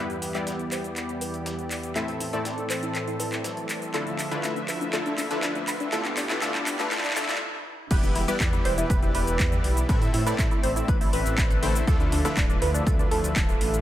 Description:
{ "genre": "progressive house", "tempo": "121 BPM", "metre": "4/4", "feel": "straight", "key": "A minor", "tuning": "A4 = 439 Hz", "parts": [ { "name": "warm analog pad", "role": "sustained chords", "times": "0.0-13.8 s", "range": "D2 to E5", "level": "-33 LUFS", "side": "equal", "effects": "chorus, sidechain pumping" }, { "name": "tight sequenced synth", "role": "arpeggios", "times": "0.0-13.8 s", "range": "D4 to C5", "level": "-32 LUFS", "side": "equal", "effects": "chorus, sidechain pumping, digital delay" }, { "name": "supersaw stab", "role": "stabs", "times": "0.0-13.8 s", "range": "A2 to E5", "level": "-30 LUFS", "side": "left 2 dB", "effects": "sidechain pumping, low-pass filter, digital delay" }, { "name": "riser", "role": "sound effects", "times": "2.6-7.4 s", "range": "none", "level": "-40 LUFS", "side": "equal", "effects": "none" }, { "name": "house drum kit", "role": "drums", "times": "0.1-13.8 s", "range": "crash cymbal, handclaps, hi-hat, shaker", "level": "-31 LUFS", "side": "equal", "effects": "overdrive, high-pass filter on perc, high-pass filter on snare, high-pass filter on hats, high-pass filter on cymbals, high-pass filter on room" }, { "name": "breakbeat sampler-style drum kit", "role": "drums", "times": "0.2-13.7 s", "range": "hi-hat, snare drum", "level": "-42 LUFS", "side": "equal", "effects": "none" }, { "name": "dark detuned saw bass", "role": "bass", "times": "7.9-13.8 s", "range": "D1 to A2", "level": "-27 LUFS", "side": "equal", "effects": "sidechain pumping" }, { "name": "electronic kick drum", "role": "drums", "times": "7.9-13.5 s", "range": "none", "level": "-24 LUFS", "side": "equal", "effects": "overdrive" } ], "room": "light reverb", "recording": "high-pass filter", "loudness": "-23 LUFS", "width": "side -13 dB against mid", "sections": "0.0-7.9 A section; 7.9-13.8 B section", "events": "build-up 0.0-7.9; drum fill 0.0-7.4; filter sweep on synth arpeggio sound 0.0-7.9; filter sweep on supersaw synth 0.0-7.9; filter sweep 0.0-7.9; stop 7.4-7.9; drop 7.9-13.8", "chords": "0.0 Em; 2.0 Am; 3.9 Dmadd9; 5.9 G; 7.9 Em; 9.9 Am; 11.9 Dmadd9" }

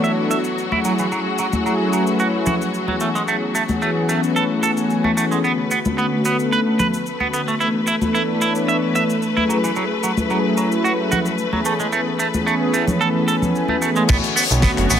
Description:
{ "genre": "nu-disco, nu disco", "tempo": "111 BPM", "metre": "4/4", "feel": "straight", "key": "unclear", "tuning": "A4 = 443 Hz", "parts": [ { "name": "warm analog pad", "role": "accompaniment", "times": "0.0-15.0 s", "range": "D3 to G#5", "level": "-20 LUFS", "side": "left 1 dB", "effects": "chorus, ping-pong delay" }, { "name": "rich studio string section", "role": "sustained chords", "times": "0.0-15.0 s", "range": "F#3 to C#5", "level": "-25 LUFS", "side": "left 3 dB", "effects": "sidechain pumping" }, { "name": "clean electric guitar", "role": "riff", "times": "0.0-15.0 s", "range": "E3 to E5", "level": "-22 LUFS", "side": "right 4 dB", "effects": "wide subtle chorus, low-pass filter, ping-pong delay" }, { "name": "cabasa and congas", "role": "percussion", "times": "0.0-14.1 s", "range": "none", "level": "-25 LUFS", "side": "left 1 dB", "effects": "none" }, { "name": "chorused synth bass", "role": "bass", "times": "14.1-15.0 s", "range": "F#1 to B1", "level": "-19 LUFS", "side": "equal", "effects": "none" }, { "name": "damped 70s drum kit", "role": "drums", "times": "14.1-15.0 s", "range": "crash cymbal, finger snaps, hi-hat, shaker, snare drum", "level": "-19 LUFS", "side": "left 3 dB", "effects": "none" }, { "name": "kick drum", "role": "drums", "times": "14.1-14.7 s", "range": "none", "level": "-17 LUFS", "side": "equal", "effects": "none" } ], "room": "moderate plate reverb, RT60 2.5 s", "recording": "faint mains hum", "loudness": "-17 LUFS", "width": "side -9 dB against mid", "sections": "0.0-14.1 A section", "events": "none", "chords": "0.0 E7sus4; 0.8 F#m9; 5.4 Bm9; 7.6 E7sus4; 9.5 F#m9; 14.1 Bm9" }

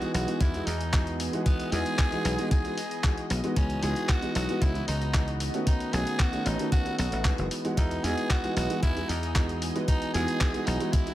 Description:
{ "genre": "nu-disco, nu disco", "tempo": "114 BPM", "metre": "4/4", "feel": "straight", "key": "E major", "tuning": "A4 = 441 Hz", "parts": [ { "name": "breathy tenor saxophone", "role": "melody", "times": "0.0-11.1 s", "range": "B3 to G#4", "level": "-34 LUFS", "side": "equal", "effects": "ping-pong delay" }, { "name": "dark concert grand piano", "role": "accompaniment", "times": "0.0-11.1 s", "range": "D#3 to F#4", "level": "-31 LUFS", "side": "right 1 dB", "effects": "none" }, { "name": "lush unison pad", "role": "sustained chords", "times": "0.0-11.1 s", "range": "E3 to D#5", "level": "-37 LUFS", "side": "left 1 dB", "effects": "chorus, phaser, sidechain pumping" }, { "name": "dusty soul sampler-style drum kit", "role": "drums", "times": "0.0-11.1 s", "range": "handclaps, hi-hat", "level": "-35 LUFS", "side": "equal", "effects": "none" }, { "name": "dry thumbed slap bass", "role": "bass", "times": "0.1-10.8 s", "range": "F#1 to E2", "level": "-30 LUFS", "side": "equal", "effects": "none" }, { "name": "electronic kick drum", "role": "drums", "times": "0.4-11.0 s", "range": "none", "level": "-25 LUFS", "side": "equal", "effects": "none" } ], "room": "little or no reverb", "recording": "none", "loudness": "-25 LUFS", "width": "side -14 dB against mid", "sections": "0.0-11.1 A section", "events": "none", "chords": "0.0 Emaj7; 3.6 C#m11; 5.7 B7; 7.5 Emaj7" }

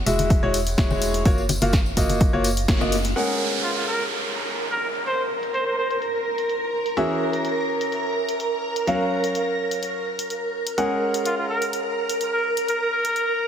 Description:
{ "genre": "piano house", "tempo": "126 BPM", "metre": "4/4", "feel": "straight", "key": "unclear", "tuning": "A4 = 440 Hz", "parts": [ { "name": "organ-like FM bass", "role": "bass", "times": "0.0-3.1 s", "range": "E1 to Gb1", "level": "-26 LUFS", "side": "equal", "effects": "tube saturation, sidechain pumping" }, { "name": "clear grand piano", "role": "riff", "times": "0.1-13.5 s", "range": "E3 to Gb5", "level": "-25 LUFS", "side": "equal", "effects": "sidechain pumping, low-pass filter, dub echo" }, { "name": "punchy analog drum machine", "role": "drums", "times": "0.1-13.3 s", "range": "crash cymbal, hi-hat, snare drum", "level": "-30 LUFS", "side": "left 1 dB", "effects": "overdrive, low-pass filter on hats, low-pass filter on snare, low-pass filter on cymbals" }, { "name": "tambourine and congas", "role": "percussion", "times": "0.1-3.1 s", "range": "none", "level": "-31 LUFS", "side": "left 3 dB", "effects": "none" }, { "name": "electronic kick drum", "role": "drums", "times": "0.3-2.8 s", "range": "none", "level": "-20 LUFS", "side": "equal", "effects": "overdrive" }, { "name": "string machine, violins", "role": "sustained chords", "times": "3.2-13.5 s", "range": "Bb4 to Bb5", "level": "-26 LUFS", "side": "right 2 dB", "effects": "ensemble chorus, sidechain pumping" }, { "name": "downlifter", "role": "sound effects", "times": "3.2-7.0 s", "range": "none", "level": "-30 LUFS", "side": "right 2 dB", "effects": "none" }, { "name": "clear trumpet", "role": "melody", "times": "3.6-6.0, 11.3-13.5 s", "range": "F4 to C5", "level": "-26 LUFS", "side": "equal", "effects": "dub echo" } ], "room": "moderate lush hall reverb, RT60 2.2 s", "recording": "heavily compressed radio sound", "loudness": "-20 LUFS", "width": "side -8 dB against mid", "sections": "0.0-3.2 A section; 3.2-13.5 B section", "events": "band accent 2.7; filter sweep on drum 3.2-13.5; filter sweep on string machine 3.2-13.5", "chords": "0.0 E69; 1.3 Gbmaj7; 3.2 Ab9sus4; 7.0 E69; 8.9 Gbmaj7; 10.8 Ab9sus4" }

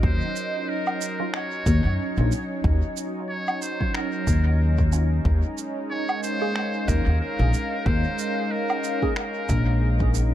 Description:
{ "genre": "ambient dub", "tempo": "92 BPM", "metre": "4/4", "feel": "swing 57% on 16ths", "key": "Eb dorian", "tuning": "A4 = 441 Hz", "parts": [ { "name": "trumpet with metal mute", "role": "melody", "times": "0.0-10.1 s", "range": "Bb4 to Db5", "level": "-31 LUFS", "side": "equal", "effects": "dub echo" }, { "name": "warm analog pad", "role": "sustained chords", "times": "0.0-10.3 s", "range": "Gb3 to F5", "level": "-29 LUFS", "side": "equal", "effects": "chorus, phaser" }, { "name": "upright bass", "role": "bass", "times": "0.0-10.3 s", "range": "Bb1 to Gb2", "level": "-20 LUFS", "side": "equal", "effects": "tube saturation" }, { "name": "electronic kick drum", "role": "drums", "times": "0.0-10.1 s", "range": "none", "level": "-26 LUFS", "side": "equal", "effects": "overdrive" }, { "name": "electronic shaker, woodblock and finger snaps", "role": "drums", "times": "0.4-10.3 s", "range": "none", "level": "-33 LUFS", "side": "right 2 dB", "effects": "dub echo" }, { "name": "filtered dub chord stab", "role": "stabs", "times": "1.2-9.1 s", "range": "Gb3 to Ab4", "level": "-33 LUFS", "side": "right 3 dB", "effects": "phaser, lush chorus, dub echo" } ], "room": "light reverb", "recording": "echo-heavy mix", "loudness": "-21 LUFS", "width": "side -12 dB against mid", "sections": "0.0-10.3 A section", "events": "none", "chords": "0.0 Ebm7; 5.3 Bbm7" }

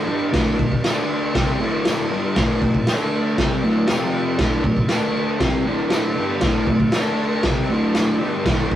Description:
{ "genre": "garage rock duo or trio", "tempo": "118 BPM", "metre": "4/4", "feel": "straight", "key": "D minor", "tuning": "A4 = 439 Hz", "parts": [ { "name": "fuzz guitar", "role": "riff", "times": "0.0-8.8 s", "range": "D2 to D4", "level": "-20 LUFS", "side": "equal", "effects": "distortion" }, { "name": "raw garage drum kit", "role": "drums", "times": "0.3-8.8 s", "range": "crash cymbal, kick drum, snare drum", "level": "-20 LUFS", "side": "equal", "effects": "vintage 12-bit sampler grit" }, { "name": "tambourine", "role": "percussion", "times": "0.9-8.1 s", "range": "none", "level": "-47 LUFS", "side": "left 3 dB", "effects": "none" } ], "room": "moderate stone room reverb, RT60 1.2 s", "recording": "rough rehearsal-room recording, warm saturation, cassette tape", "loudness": "-17 LUFS", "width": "side -12 dB against mid", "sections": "0.0-8.8 A section", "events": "none", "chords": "0.0 D5; 3.9 F5; 4.4 D5" }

